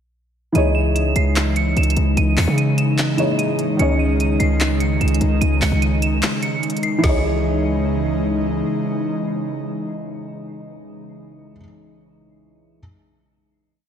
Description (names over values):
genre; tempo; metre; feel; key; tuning
hip hop, trap; 148 BPM; 4/4; half-time; C# minor; A4 = 440 Hz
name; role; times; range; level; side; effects
felt-muted upright piano; accompaniment; 0.5-12.8 s; D#3 to C#5; -24 LUFS; equal; low-pass filter
airy breathy pad; sustained chords; 0.5-11.0 s; C#3 to D#4; -22 LUFS; equal; chorus
delicate synth tine bell; melody; 0.6-8.2 s; B#6 to E7; -26 LUFS; right 3 dB; chorus, phaser, low-pass filter, ping-pong delay
hard-hitting 808-style bass; bass; 0.6-8.6 s; C#2 to C#3; -19 LUFS; equal; none
trap drum kit; drums; 0.6-7.1 s; crash cymbal, handclaps, hi-hat, kick drum, snare drum; -24 LUFS; equal; none
room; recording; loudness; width
moderate plate reverb, RT60 2.1 s; dreamy mix soaked in reverb; -16 LUFS; side -8 dB against mid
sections
0.6-7.0 hook; 7.0-10.3 final chord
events
break 6.2-7.0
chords
0.6 C#madd9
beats
| 0.55 0.96 1.36 1.77 | 2.17 2.58 2.98 3.39 | 3.79 4.20 4.60 5.01 | 5.42 5.82 6.23 6.63 | 7.04 7.44 7.85 8.25 | 8.66 9.06 9.47 9.88